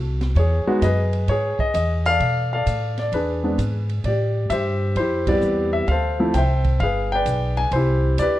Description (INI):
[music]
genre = jazz piano trio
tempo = 130 BPM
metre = 4/4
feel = swing 67% on 8ths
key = unclear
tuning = A4 = 441 Hz
[part]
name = warm grand piano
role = melody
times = 0.0-8.4 s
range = F3 to Ab5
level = -21 LUFS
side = left 1 dB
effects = plate reverb
[part]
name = upright bass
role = bass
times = 0.0-8.4 s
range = G1 to B2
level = -22 LUFS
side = equal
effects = none
[part]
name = open jazz drum kit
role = drums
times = 0.2-8.3 s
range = hi-hat, kick drum, ride cymbal, snare drum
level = -32 LUFS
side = right 2 dB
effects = none
[sound]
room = light reverb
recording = dark, warm production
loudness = -18 LUFS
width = side -14 dB against mid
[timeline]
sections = 0.0-8.4 A section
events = band accent 5.2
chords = 0.4 Emaj7; 2.2 Bm7b5; 3.1 E7; 4.0 Am7; 5.9 Dm9; 6.8 G; 7.7 Cmaj7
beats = | 0.36 0.83 1.29 1.75 | 2.21 2.67 3.13 3.59 | 4.05 4.51 4.96 5.42 | 5.88 6.34 6.80 7.27 | 7.73 8.19